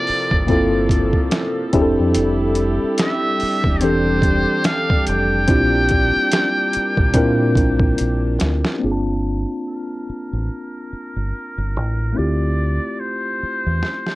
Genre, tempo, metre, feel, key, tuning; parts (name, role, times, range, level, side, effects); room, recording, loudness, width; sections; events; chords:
R&B, neo-soul; 72 BPM; 4/4; swing 57% on 16ths; G dorian; A4 = 441 Hz
trumpet with metal mute; melody; 0.0-14.2 s; Bb4 to G5; -22 LUFS; equal; low-pass filter, slapback echo, plate reverb
mellow tine electric piano; accompaniment; 0.0-14.2 s; E3 to A5; -21 LUFS; left 1 dB; medium stereo tremolo, low-pass filter, plate reverb
warm chamber string section; sustained chords; 0.0-8.8 s; C3 to A4; -26 LUFS; right 1 dB; plate reverb
deep dub fingered electric bass; bass; 0.1-13.8 s; E1 to Bb2; -21 LUFS; equal
boom bap sampler-style drum kit; drums; 0.1-8.8, 13.8-14.2 s; hi-hat, kick drum, snare drum; -19 LUFS; equal
light reverb; worn, warbling old tape, cassette tape, warbly pitch drift; -16 LUFS; side -18 dB against mid
0.0-8.8 A section; 8.8-14.2 B section
drum fill 8.0-8.8, 13.8-14.2; filter sweep 8.8-14.2
0.0 Gm11; 1.7 Fmaj9; 5.5 Bb6; 8.8 Gm9; 12.2 Dm9